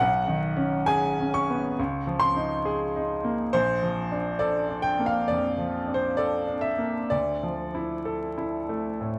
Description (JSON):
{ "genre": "classical, impressionist solo piano", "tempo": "62-71 BPM", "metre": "4/4", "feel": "rubato", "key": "unclear", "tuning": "A4 = 440 Hz", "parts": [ { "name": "bright baby grand piano", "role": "solo", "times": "0.0-9.2 s", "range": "Bb1 to C#6", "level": "-26 LUFS", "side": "equal", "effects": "none" } ], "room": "light reverb", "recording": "close, detailed microphones, vinyl crackle", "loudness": "-27 LUFS", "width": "mono", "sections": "0.0-9.2 A section", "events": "none", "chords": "0.0 B69; 1.8 C#69; 3.5 Bbmaj7; 7.1 Dmadd9" }